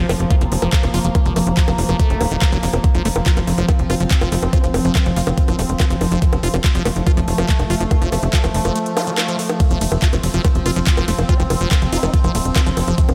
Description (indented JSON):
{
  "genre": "psychedelic trance",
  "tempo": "142 BPM",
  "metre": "4/4",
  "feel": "straight",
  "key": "F major",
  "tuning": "A4 = 439 Hz",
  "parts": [
    { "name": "evolving wavetable pad", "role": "sustained chords", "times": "0.0-13.1 s", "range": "F3 to C4", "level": "-25 LUFS", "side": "equal", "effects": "chorus, built-in reverb, sidechain pumping" },
    { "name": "liquid acid bass", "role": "riff", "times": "0.0-13.0 s", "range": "Eb3 to F4", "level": "-28 LUFS", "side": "equal", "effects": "phaser, sidechain pumping, diffuse ambient delay" },
    { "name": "tight sequencer bass", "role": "bass", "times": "0.0-13.1 s", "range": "Eb1 to Gb1", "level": "-22 LUFS", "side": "equal", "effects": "none" },
    { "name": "garage drum kit", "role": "drums", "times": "0.1-13.1 s", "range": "bongos, handclaps, hi-hat, ride cymbal", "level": "-26 LUFS", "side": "equal", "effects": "overdrive" },
    { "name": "electronic kick drum", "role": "drums", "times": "0.3-13.1 s", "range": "none", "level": "-18 LUFS", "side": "equal", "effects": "overdrive" },
    { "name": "formant-sweep wobble bass", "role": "second line", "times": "4.5-4.7, 11.3-12.1 s", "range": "C4 to Eb4", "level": "-35 LUFS", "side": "equal", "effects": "none" },
    { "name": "swell and zap", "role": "sound effects", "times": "9.0-9.6 s", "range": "none", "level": "-33 LUFS", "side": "equal", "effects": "none" }
  ],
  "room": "light reverb",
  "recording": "none",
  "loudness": "-17 LUFS",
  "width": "mono",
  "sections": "0.0-13.1 A section",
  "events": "swell 9.0-9.6",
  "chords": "0.0 F5"
}